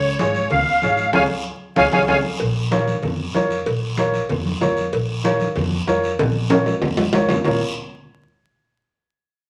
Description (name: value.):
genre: latin, cumbia.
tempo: 190 BPM.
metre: 4/4.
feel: straight.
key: Bb minor.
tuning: A4 = 442 Hz.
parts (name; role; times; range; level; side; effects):
musette accordion; melody; 0.0-2.2 s; Db5 to Ab5; -20 LUFS; equal; none.
upright bass; bass; 0.0-7.6 s; Ab1 to F2; -28 LUFS; equal; none.
warm upright piano; accompaniment; 0.2-7.6 s; F4 to Db5; -24 LUFS; equal; none.
congas; percussion; 0.2-7.5 s; none; -28 LUFS; equal; none.
guiro; percussion; 0.2-7.5 s; none; -36 LUFS; equal; none.
cowbell and timbales; percussion; 0.5-7.5 s; none; -26 LUFS; equal; none.
room: wet club reverb, RT60 0.8 s.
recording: vinyl crackle.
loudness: -20 LUFS.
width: mono.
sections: 0.0-2.4 A section; 2.4-7.5 B section; 7.5-8.7 C section.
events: band accent 1.1-2.4; drum fill 6.2-7.5.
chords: 0.0 Db; 2.4 Bbm.